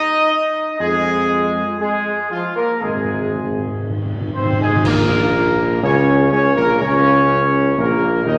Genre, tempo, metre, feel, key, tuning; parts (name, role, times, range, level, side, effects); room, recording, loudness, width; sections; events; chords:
classical, ceremonial fanfare; 57-62 BPM; 4/4; straight; A4 = 440 Hz
dark trumpet section; melody; 0.0-8.4 s; F4 to Eb5; -21 LUFS; equal
warm French horn section; sustained chords; 0.0-8.4 s; F3 to Eb4; -25 LUFS; equal
warm trombone section; sustained chords; 0.0-8.4 s; Bb2 to Eb4; -29 LUFS; equal
warm tuba; bass; 0.8-8.4 s; Ab1 to F2; -21 LUFS; equal
cymbal swell, clash cymbals and concert bass drum; percussion; 0.8-6.8 s; -32 LUFS; equal
timpani; percussion; 2.8-4.8 s; Ab2; -23 LUFS; equal
wet scoring stage reverb, RT60 1.6 s; -17 LUFS; mono
0.0-4.9 A section; 4.9-8.4 B section
timpani fill 2.8-4.9; band accent 4.9-5.8
0.0 N.C.; 0.8 Fmadd11; 2.8 N.C.; 4.9 Bbm